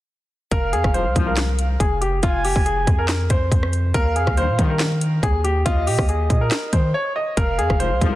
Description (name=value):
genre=hip hop, trap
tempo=140 BPM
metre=4/4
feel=half-time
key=F minor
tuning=A4 = 439 Hz
part: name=clear baby grand piano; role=melody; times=0.5-8.2 s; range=F4 to Eb5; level=-23 LUFS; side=left 1 dB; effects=digital delay
part: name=breathy flute-like synth lead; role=second line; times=0.5-8.2 s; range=Eb5 to Ab5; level=-28 LUFS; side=right 4 dB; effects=chorus, digital delay
part: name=long sustained 808-style bass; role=bass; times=0.5-8.2 s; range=F1 to Eb3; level=-22 LUFS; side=equal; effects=none
part: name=trap drum kit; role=drums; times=0.5-8.1 s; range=handclaps, hi-hat, kick drum, rim click, snare drum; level=-21 LUFS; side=equal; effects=vintage 12-bit sampler grit
part: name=clear brass ensemble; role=stabs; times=0.9-1.5, 4.4-4.9, 7.8-8.2 s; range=Bb1 to F3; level=-28 LUFS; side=left 6 dB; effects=none
room=little or no reverb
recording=dense, heavily limited modern master, lossy compression artefacts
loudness=-17 LUFS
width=side -15 dB against mid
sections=0.5-8.2 A section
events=break 6.9-7.4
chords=0.5 Fm; 3.9 Eb5; 7.4 Fm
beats=| 0.52 0.94 1.37 1.80 | 2.23 2.66 3.09 3.52 | 3.94 4.37 4.80 5.23 | 5.66 6.09 6.51 6.94 | 7.37 7.80